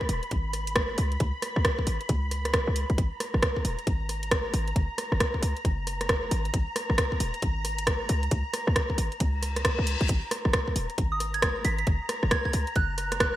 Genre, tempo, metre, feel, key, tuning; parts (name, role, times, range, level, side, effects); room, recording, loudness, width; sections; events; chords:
UK garage, two-step garage; 135 BPM; 4/4; swing 62% on 16ths; G# minor; A4 = 440 Hz
soft string machine; sustained chords; 0.0-13.4 s; A#5 to B5; -36 LUFS; equal; ensemble chorus, sidechain pumping
electronic kick drum; drums; 0.0-13.3 s; -28 LUFS; equal
short 808-style bass; bass; 0.1-13.4 s; D#1 to C#2; -28 LUFS; equal
garage drum kit; drums; 0.1-13.3 s; hi-hat, rim click; -28 LUFS; right 1 dB; overdrive, gated reverb
reverse cymbal; sound effects; 9.4-10.1 s; -35 LUFS; left 6 dB
soft synth bell; melody; 11.1-13.4 s; D#6 to B6; -31 LUFS; right 4 dB; chorus, digital delay
light reverb; bright 1980s-style digital production; -25 LUFS; side -14 dB against mid
0.0-13.4 A section
reverse cymbal 9.4-10.1
0.0 G#m; 1.0 C#5; 3.0 G#sus2; 4.8 F#5; 6.3 G#sus2; 8.1 C#5; 10.1 G#sus2; 11.9 F#5